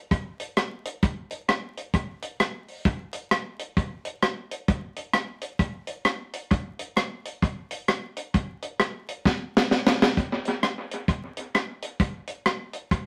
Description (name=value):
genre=ska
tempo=131 BPM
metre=4/4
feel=swing 62% on 8ths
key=none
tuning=none
part: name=deep reggae drum kit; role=drums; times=0.1-13.0 s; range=hi-hat, kick drum, rim click, snare drum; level=-26 LUFS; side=equal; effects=analog delay
room=wet studio reverb, RT60 0.6 s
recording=vinyl crackle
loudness=-27 LUFS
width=mono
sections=0.0-10.2 A section; 10.2-13.1 B section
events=drum fill 9.3-10.2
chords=none